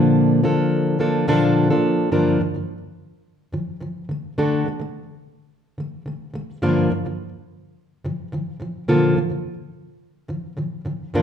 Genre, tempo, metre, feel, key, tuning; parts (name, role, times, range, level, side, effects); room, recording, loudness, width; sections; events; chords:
pop; 106 BPM; 4/4; straight; G minor; A4 = 440 Hz
fingerpicked plugged-in steel-string acoustic guitar; solo; 0.0-11.2 s; G2 to Bb4; -19 LUFS; equal
wet large studio reverb, RT60 1.4 s; band playing live in one room; -19 LUFS; side -8 dB against mid
0.0-2.1 A section; 2.1-11.2 B section
0.0 Bbmaj7; 2.1 Gm7; 4.1 D5; 6.6 Gm7; 8.6 Bb